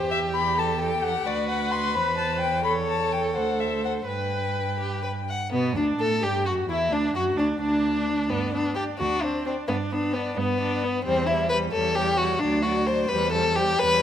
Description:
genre	quick classical-period movement for string quartet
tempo	87 BPM (dotted quarters)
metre	6/8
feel	straight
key	G major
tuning	A4 = 444 Hz
part	dark violin	melody	0.0-14.0 s	B3 to C6	-30 LUFS	left 7 dB	none
part	rich violin	second line	0.0-14.0 s	B3 to F#5	-25 LUFS	left 2 dB	none
part	clear viola	accompaniment	0.0-14.0 s	F#3 to B4	-30 LUFS	right 3 dB	none
part	warm cello	bass	0.0-14.0 s	D2 to B2	-30 LUFS	right 5 dB	none
room	moderate recital hall reverb, RT60 1.7 s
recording	none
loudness	-22 LUFS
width	side -10 dB against mid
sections	0.0-5.5 A section; 5.5-14.0 A section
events	none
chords	0.0 Em; 1.3 D; 2.0 C/E; 2.7 A/E; 3.4 D5; 4.1 G; 5.5 Bm7; 6.2 Emadd9; 6.9 D; 8.3 G; 9.0 D7; 9.7 G; 11.1 C/E; 12.4 D; 13.1 C/E

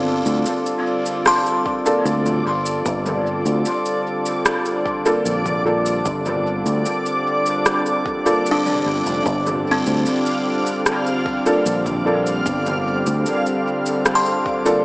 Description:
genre	ambient dub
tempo	75 BPM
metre	4/4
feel	straight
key	G minor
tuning	A4 = 440 Hz
part	warm analog pad	sustained chords	0.0-14.8 s	D3 to A4	-23 LUFS	equal	chorus
part	buzzing kalimba	arpeggios	0.0-14.8 s	C4 to C6	-23 LUFS	left 1 dB	dub echo
part	fingered electric bass	bass	0.0-13.2 s	F1 to D2	-23 LUFS	equal	none
part	backwards swelling texture	texture	0.0-14.8 s	D4 to F5	-24 LUFS	equal	built-in reverb
part	organic electronic drum kit	drums	0.3-14.8 s	rim click, shaker, toms	-25 LUFS	equal	dub echo
part	electronic kick drum	drums	1.7-14.6 s	none	-31 LUFS	equal	none
part	dark upright piano	stabs	1.9-14.8 s	Bb3 to A4	-24 LUFS	equal	dub echo
room	moderate plate reverb, RT60 3.1 s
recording	echo-heavy mix, small speaker sound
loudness	-17 LUFS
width	side -23 dB against mid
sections	0.0-14.8 A section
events	none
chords	0.0 Gm9

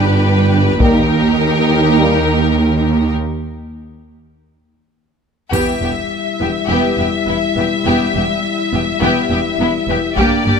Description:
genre	cinematic, epic orchestral film score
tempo	103 BPM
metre	4/4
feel	straight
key	unclear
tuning	A4 = 440 Hz
part	clear symphonic violin section	melody	0.0-10.6 s	A#4 to E5	-20 LUFS	left 5 dB	none
part	warm symphonic violin section	second line	0.0-10.6 s	E4 to G4	-21 LUFS	left 3 dB	none
part	warm symphonic viola section	accompaniment	0.0-10.5 s	Bb3 to D#4	-21 LUFS	right 1 dB	none
part	mellow tuba	bass	0.0-3.1 s	G1 to D#2	-19 LUFS	right 4 dB	none
part	rich symphonic cello section	bass	0.0-10.5 s	D#2 to G2	-20 LUFS	right 3 dB	none
part	rich symphonic double bass section	bass	0.0-10.5 s	E1 to D#2	-22 LUFS	right 4 dB	none
part	bright trombone section	sustained chords	0.8-2.2 s	D#3 to G3	-28 LUFS	right 5 dB	none
part	mellow French horn section	sustained chords	0.8-10.6 s	G3 to A#4	-22 LUFS	left 7 dB	none
part	taiko ensemble	drums	0.8-1.3, 5.5-6.7, 10.2-10.6 s	none	-19 LUFS	left 1 dB	none
part	triangle	percussion	5.5-6.7 s	none	-32 LUFS	left 2 dB	none
room	light reverb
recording	close, detailed microphones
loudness	-13 LUFS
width	side -6 dB against mid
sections	0.0-5.5 A section; 5.5-10.6 B section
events	break 3.2-5.5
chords	0.0 G; 0.8 D#; 5.5 Em

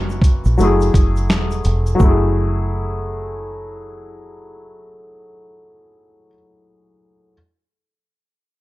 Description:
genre	lo-fi hip hop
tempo	85 BPM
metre	4/4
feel	swing 61% on 16ths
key	F# minor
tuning	A4 = 436 Hz
part	warm upright piano	accompaniment	0.0-7.3 s	E3 to G#4	-22 LUFS	left 2 dB	cassette tape, low-pass filter, plate reverb
part	deep dub fingered electric bass	bass	0.0-6.3 s	E1 to A#1	-19 LUFS	equal	none
part	dusty soul sampler-style drum kit	drums	0.1-2.2 s	finger snaps, hi-hat, kick drum, shaker, snare drum	-16 LUFS	equal	none
part	egg shaker	percussion	0.1-2.3 s	none	-46 LUFS	right 9 dB	none
room	light reverb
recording	dark, warm production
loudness	-14 LUFS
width	side -17 dB against mid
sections	0.0-2.0 A section; 2.0-4.8 B section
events	none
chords	0.0 F#7; 0.6 F#m9

